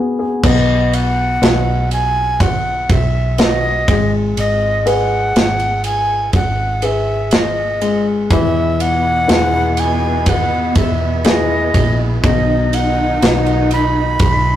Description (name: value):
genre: pop ballad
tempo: 61 BPM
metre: 4/4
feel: straight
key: B major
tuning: A4 = 438 Hz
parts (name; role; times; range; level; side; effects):
- warm upright piano; accompaniment; 0.0-14.6 s; B2 to D#5; -20 LUFS; left 3 dB; none
- breathy alto recorder; melody; 0.4-14.6 s; D#5 to B5; -18 LUFS; equal; none
- hollow-body short-scale fingered electric bass; bass; 0.4-14.6 s; G#1 to E2; -19 LUFS; right 1 dB; none
- modern studio drum kit; drums; 0.4-14.4 s; crash cymbal, kick drum, ride cymbal, snare drum; -18 LUFS; right 1 dB; none
- dark studio cello section; second line; 8.3-14.6 s; B2 to D#4; -21 LUFS; right 1 dB; none
room: moderate small room reverb, RT60 0.5 s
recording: rough rehearsal-room recording, tube saturation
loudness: -13 LUFS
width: side -11 dB against mid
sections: 0.4-14.6 A section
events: break 0.0-0.4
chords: 0.4 B; 3.9 G#m; 8.3 E; 12.2 B